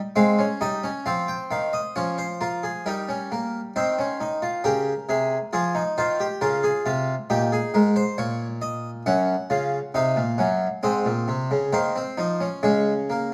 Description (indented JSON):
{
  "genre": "classical, baroque-style 3-part fugue for harpsichord",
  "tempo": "67 BPM",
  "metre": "4/4",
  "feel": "straight",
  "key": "unclear",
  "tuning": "A4 = 440 Hz",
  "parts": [
    { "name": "harpsichord", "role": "solo", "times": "0.2-13.3 s", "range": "Gb2 to G5", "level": "-24 LUFS", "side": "equal", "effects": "none" }
  ],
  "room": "wet stone room reverb, RT60 1.2 s",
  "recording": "heard from further back in the room",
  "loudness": "-24 LUFS",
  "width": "mono",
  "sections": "0.0-2.0 A section; 2.0-13.3 B section",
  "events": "none",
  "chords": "0.2 Ab; 2.0 Gm7b5/F; 3.8 Fm7; 7.3 Bbm; 9.1 Gb; 10.8 Ab; 12.6 Db5"
}